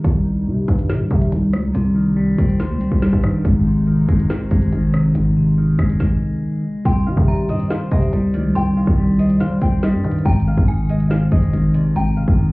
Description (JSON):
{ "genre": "hip hop, drill", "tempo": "141 BPM", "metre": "4/4", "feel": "half-time", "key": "C minor", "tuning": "A4 = 439 Hz", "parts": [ { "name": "hollow soft pad", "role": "sustained chords", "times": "0.0-6.0 s", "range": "C3 to Eb4", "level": "-24 LUFS", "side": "equal", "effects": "chorus" }, { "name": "growling 808-style bass", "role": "bass", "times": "0.0-12.5 s", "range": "Ab1 to G3", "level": "-18 LUFS", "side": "equal", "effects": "none" }, { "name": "drill drum kit", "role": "drums", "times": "0.0-12.4 s", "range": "hi-hat, kick drum, rim click, snare drum", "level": "-18 LUFS", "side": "equal", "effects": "none" }, { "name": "clean electric guitar", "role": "accompaniment", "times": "1.7-12.5 s", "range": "Ab2 to C5", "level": "-20 LUFS", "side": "left 1 dB", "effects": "none" }, { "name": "nylon-string guitar", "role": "melody", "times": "6.9-12.3 s", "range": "D5 to G5", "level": "-29 LUFS", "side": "left 1 dB", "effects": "digital delay" }, { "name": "metallic FM bell", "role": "second line", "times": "6.9-12.4 s", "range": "Ab5 to C6", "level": "-35 LUFS", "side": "right 2 dB", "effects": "chorus, tremolo, digital delay" } ], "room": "little or no reverb", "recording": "heard muffled through a wall, club reverb, vinyl crackle, EQ, nothing above 7.9 kHz", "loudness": "-15 LUFS", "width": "side -23 dB against mid", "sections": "0.0-6.9 A section; 6.9-12.5 B section", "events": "break 0.0-1.7; stop 6.0-6.9", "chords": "0.0 Cm; 3.4 Ab; 6.9 Cm; 10.3 Ab", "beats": "| 0.04 0.47 0.90 1.32 | 1.75 2.17 2.60 3.02 | 3.45 3.87 4.30 4.72 | 5.15 5.58 6.00 6.43 | 6.85 7.28 7.70 8.13 | 8.55 8.98 9.41 9.83 | 10.26 10.68 11.11 11.53 | 11.96 12.38" }